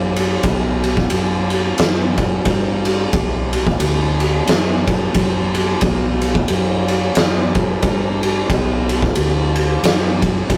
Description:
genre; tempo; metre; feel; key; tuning
stoner and doom metal; 90 BPM; 4/4; swing 59% on 8ths; B minor; A4 = 440 Hz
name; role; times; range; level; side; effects
fuzz fingered electric bass; bass; 0.0-10.6 s; B1 to G2; -22 LUFS; equal; overdrive
oversized low-tuned drum kit; drums; 0.2-10.6 s; kick drum, ride cymbal, snare drum; -19 LUFS; equal; none
room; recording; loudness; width
light reverb; rough rehearsal-room recording, warm saturation; -17 LUFS; mono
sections
0.0-10.6 A section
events
none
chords
none

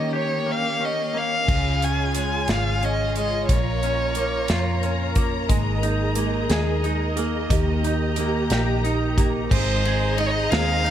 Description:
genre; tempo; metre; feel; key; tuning
six-eight pop ballad; 60 BPM (dotted quarters); 6/8; straight; Ab major; A4 = 440 Hz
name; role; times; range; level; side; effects
dark violin; melody; 0.0-5.1, 9.5-10.9 s; C5 to Ab5; -25 LUFS; left 1 dB; digital delay
direct-recorded clean electric guitar; accompaniment; 0.0-10.9 s; Bb2 to Ab4; -27 LUFS; right 1 dB; double-tracked left and right
dark studio string section; sustained chords; 0.0-10.9 s; Eb3 to Bb5; -29 LUFS; left 1 dB; none
vintage muted fingered electric bass; bass; 1.5-10.9 s; Ab1 to F2; -25 LUFS; equal; none
modern studio drum kit; drums; 1.5-10.9 s; crash cymbal, hi-hat, kick drum, ride cymbal, snare drum; -25 LUFS; equal; none
fingerpicked steel-string acoustic guitar; arpeggios; 5.5-10.9 s; Eb3 to Bb4; -30 LUFS; right 6 dB; none
room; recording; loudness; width
small room ambience; none; -20 LUFS; side -10 dB against mid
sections
0.0-1.5 A section; 1.5-9.5 B section; 9.5-10.9 C section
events
none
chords
0.0 Eb7; 1.5 Db; 3.5 Bbm; 5.5 Absus2; 7.5 Eb; 9.5 Abadd9

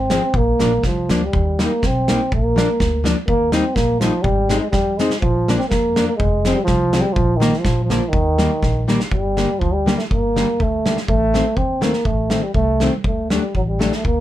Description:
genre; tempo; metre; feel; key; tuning
alpine folk, alpine dance band; 123 BPM; 2/4; rubato; Eb major, G minor from 9.1 s; A4 = 441 Hz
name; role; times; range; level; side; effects
warm euphonium; melody; 0.0-14.2 s; Eb3 to C4; -20 LUFS; right 1 dB; none
upright bass; bass; 0.0-14.2 s; F1 to F2; -22 LUFS; equal; none
fingerpicked plugged-in steel-string acoustic guitar; accompaniment; 0.1-13.9 s; D3 to Eb4; -20 LUFS; left 2 dB; none
loose indie drum kit; drums; 0.1-14.2 s; hi-hat, kick drum, snare drum; -22 LUFS; equal; none
room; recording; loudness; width
little or no reverb; none; -15 LUFS; side -13 dB against mid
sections
0.0-9.1 A section; 9.1-14.2 B section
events
drum fill 5.0, 8.6-9.1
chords
0.3 Bb; 1.3 Eb; 2.3 Bb; 3.3 Eb; 4.2 Ab; 5.2 Bb; 6.2 Fm; 7.2 Bbsus4; 7.7 Bb; 8.1 Eb; 9.1 Gm; 11.1 Adim; 13.1 D

